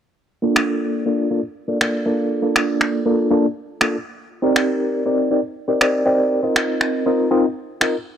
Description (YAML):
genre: filtered disco house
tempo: 120 BPM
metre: 4/4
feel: straight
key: Bb major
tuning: A4 = 440 Hz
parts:
  - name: barky reed electric piano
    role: accompaniment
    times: 0.4-8.0 s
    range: Bb3 to Eb5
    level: -18 LUFS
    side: equal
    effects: overdrive, fast tremolo, phaser, low-pass filter
  - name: tambourine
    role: percussion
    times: 0.4-8.2 s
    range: none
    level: -61 LUFS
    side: right 1 dB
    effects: none
  - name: electronic finger snaps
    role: drums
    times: 0.6-7.9 s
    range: none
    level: -20 LUFS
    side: equal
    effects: none
room: light reverb, small room ambience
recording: dry, gritty hardware recording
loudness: -17 LUFS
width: side -9 dB against mid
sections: 0.4-8.2 A section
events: filter sweep 0.4-8.2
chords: 0.4 Bbmaj7; 4.2 Cm9; 6.4 F7sus4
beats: | 0.43 0.93 1.43 1.93 | 2.43 2.93 3.43 3.93 | 4.43 4.93 5.43 5.93 | 6.43 6.93 7.43 7.93